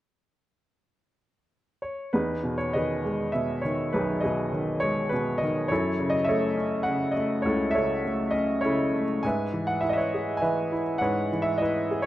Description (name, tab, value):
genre	classical, lyrical solo piano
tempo	101 BPM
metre	3/4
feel	rubato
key	E major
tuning	A4 = 438 Hz
part	bright baby grand piano	solo	1.8-12.1 s	B1 to G#5	-24 LUFS	equal	none
room	light reverb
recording	close, detailed microphones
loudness	-24 LUFS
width	side -14 dB against mid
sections	0.3-2.1 A section; 2.1-12.1 B section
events	none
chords	0.3 N.C.; 2.1 Emaj7; 5.7 F#m7; 9.2 C#m7/G#